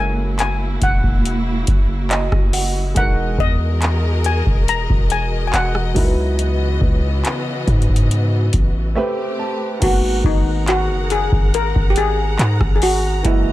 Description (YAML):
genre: contemporary R&B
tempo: 70 BPM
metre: 4/4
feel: straight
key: G# minor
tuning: A4 = 440 Hz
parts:
  - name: steel pan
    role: melody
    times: 0.0-13.5 s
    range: D#4 to A#5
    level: -21 LUFS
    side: left 2 dB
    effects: ping-pong delay
  - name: warm grand piano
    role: accompaniment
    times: 0.0-13.5 s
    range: D#3 to A5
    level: -26 LUFS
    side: right 2 dB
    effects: none
  - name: warm symphonic string section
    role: sustained chords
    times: 0.0-13.5 s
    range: C#3 to A#5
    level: -26 LUFS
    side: equal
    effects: sidechain pumping
  - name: long sustained 808-style bass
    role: bass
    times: 0.0-13.5 s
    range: E1 to G#2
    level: -19 LUFS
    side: equal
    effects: none
  - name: booming analog drum machine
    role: drums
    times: 0.4-13.4 s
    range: crash cymbal, handclaps, hi-hat, kick drum, rim click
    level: -18 LUFS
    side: equal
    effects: none
room: little or no reverb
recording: none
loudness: -15 LUFS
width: side -16 dB against mid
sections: 0.0-9.8 A section; 9.8-13.5 A section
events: grand piano fill 1.7-3.0, 8.5-9.8; break 9.0-9.8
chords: 0.0 F#9; 3.0 Emaj9#11; 6.0 C#m11; 9.0 Am9; 9.8 G#m9